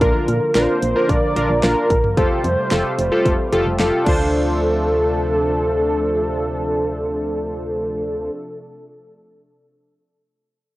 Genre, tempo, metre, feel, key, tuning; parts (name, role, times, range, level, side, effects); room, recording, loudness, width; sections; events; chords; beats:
synth-pop; 111 BPM; 4/4; straight; D minor; A4 = 439 Hz
wide unison lead; melody; 0.0-8.3 s; A4 to D5; -21 LUFS; equal; cassette tape, analog delay
warm analog keys; accompaniment; 0.0-8.3 s; D4 to C5; -22 LUFS; equal; chorus, cassette tape
warm analog pad; sustained chords; 0.0-8.3 s; C3 to Bb4; -25 LUFS; equal; chorus, cassette tape
solid FM bass; bass; 0.0-8.3 s; F1 to Bb2; -24 LUFS; equal
pop drum kit; drums; 0.0-4.2 s; crash cymbal, hi-hat, kick drum, snare drum, toms; -21 LUFS; equal
moderate booth ambience, RT60 0.2 s; home recording on cassette; -16 LUFS; side -17 dB against mid
0.0-4.3 A section; 4.3-8.7 B section
0.0 Bb; 2.2 Fadd9; 4.1 Dm7
| 0.01 0.55 1.09 1.63 | 2.17 2.71 3.25 3.79 | 4.33 4.88 5.42 5.96 | 6.50 7.04 7.58 8.12